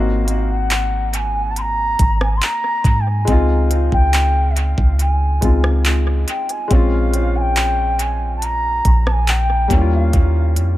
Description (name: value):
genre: contemporary R&B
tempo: 70 BPM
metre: 4/4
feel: straight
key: Bb minor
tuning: A4 = 440 Hz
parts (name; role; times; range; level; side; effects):
- mellow bansuri; melody; 0.0-10.5 s; E5 to C6; -22 LUFS; equal; analog delay
- clear grand piano; accompaniment; 0.0-10.8 s; G3 to Gb4; -23 LUFS; left 3 dB; analog delay
- soft 808-style bass; bass; 0.0-10.8 s; Ab1 to Ab2; -17 LUFS; equal; none
- trap drum kit; drums; 0.3-10.8 s; handclaps, hi-hat, kick drum, rim click; -18 LUFS; equal; analog delay
room: studio reverb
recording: echo-heavy mix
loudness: -14 LUFS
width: side -15 dB against mid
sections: 0.0-10.8 A section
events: none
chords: 0.0 Ab7; 3.3 Dbmaj9; 6.7 Bbm7; 9.7 Eb7